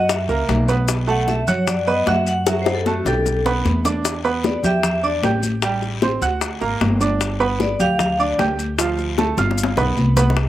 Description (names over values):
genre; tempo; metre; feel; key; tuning
Afro-Cuban jazz; 152 BPM; 4/4; straight; G major; A4 = 440 Hz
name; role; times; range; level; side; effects
vibraphone with medium hard mallets; melody; 0.0-5.2, 7.6-8.4 s; F#4 to F#5; -22 LUFS; left 1 dB; slapback echo
bright upright piano; accompaniment; 0.0-10.3 s; F3 to G6; -22 LUFS; right 5 dB; slapback echo
upright bass; bass; 0.0-10.5 s; G1 to F#2; -22 LUFS; equal; none
bongos; percussion; 0.1-10.5 s; none; -25 LUFS; left 6 dB; slapback echo
congas; percussion; 0.1-10.5 s; none; -24 LUFS; left 1 dB; none
guiro; percussion; 0.1-10.5 s; none; -36 LUFS; left 9 dB; none
maracas; percussion; 0.1-10.4 s; none; -30 LUFS; left 7 dB; none
room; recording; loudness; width
little or no reverb; recorded outdoors, with no room sound; -17 LUFS; side -13 dB against mid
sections
0.0-10.4 A section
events
vibraphone solo 0.0-10.5; drum fill 2.5-4.0, 9.4-10.4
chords
0.0 F#7; 0.9 B5; 2.5 A7sus2; 3.3 G69/B; 4.0 Em7; 5.6 Am7; 6.4 Daug; 7.2 G; 8.8 Dm; 9.6 G7